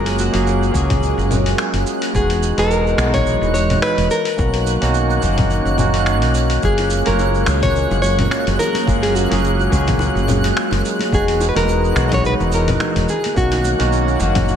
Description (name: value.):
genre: sunset chillout.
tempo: 107 BPM.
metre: 4/4.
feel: swing 56% on 16ths.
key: F# major.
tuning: A4 = 438 Hz.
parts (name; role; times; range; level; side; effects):
nylon-string guitar; melody; 0.0-14.6 s; F#4 to D#5; -22 LUFS; left 1 dB; ping-pong delay.
barky tine electric piano; accompaniment; 0.0-14.6 s; G#3 to C#5; -22 LUFS; moving between left 3 dB and right 3 dB; auto-pan, ping-pong delay.
lush unison pad; sustained chords; 0.0-14.6 s; D#3 to G#4; -24 LUFS; equal; chorus, phaser.
woody fretless electric bass; bass; 0.0-14.6 s; E1 to C#2; -19 LUFS; equal; none.
twinkling granular texture; texture; 0.0-14.6 s; F#6; -28 LUFS; right 2 dB; built-in reverb, analog chorus.
dusty soul sampler-style drum kit; drums; 0.1-14.6 s; cabasa, congas, finger snaps, hi-hat; -24 LUFS; left 2 dB; none.
electronic kick drum; drums; 0.7-14.5 s; none; -22 LUFS; equal; overdrive.
bongos and congas; percussion; 6.8-14.6 s; none; -29 LUFS; right 2 dB; none.
room: moderate plate reverb, RT60 1.9 s, digital ambience.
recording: dreamy mix soaked in reverb.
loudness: -14 LUFS.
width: side -8 dB against mid.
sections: 0.0-14.6 A section.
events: none.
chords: 0.0 F#maj9; 2.1 Emaj9; 4.1 Bmaj9; 6.6 F#maj9; 11.1 Emaj9; 13.1 Bmaj9.